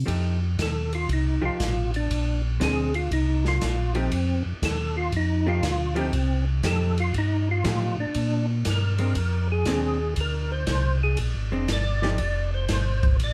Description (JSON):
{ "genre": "soul jazz organ trio", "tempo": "119 BPM", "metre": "4/4", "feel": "swing 67% on 8ths", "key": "F mixolydian", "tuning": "A4 = 443 Hz", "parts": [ { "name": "mellow tonewheel organ", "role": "bass", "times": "0.0-13.3 s", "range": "F1 to Bb2", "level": "-27 LUFS", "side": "equal", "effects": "slow rotary speaker" }, { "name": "archtop guitar, miked and amplified", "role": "accompaniment", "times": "0.1-12.2 s", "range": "F3 to G4", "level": "-32 LUFS", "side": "equal", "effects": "none" }, { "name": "open jazz drum kit", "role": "drums", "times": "0.1-13.3 s", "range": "hi-hat, kick drum, ride cymbal, snare drum", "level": "-33 LUFS", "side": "equal", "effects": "none" }, { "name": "percussive tonewheel organ", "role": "melody", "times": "0.6-13.3 s", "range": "C4 to D5", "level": "-31 LUFS", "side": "equal", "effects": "slow rotary speaker, chorus vibrato" } ], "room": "moderate studio ambience, RT60 0.5 s", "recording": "heard from further back in the room", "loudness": "-25 LUFS", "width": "mono", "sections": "0.1-13.3 A section", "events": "tonewheel organ solo 0.1-13.3", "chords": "0.1 F9; 2.1 Bb9; 4.1 F9; 8.2 Bb9; 12.2 Fadd9" }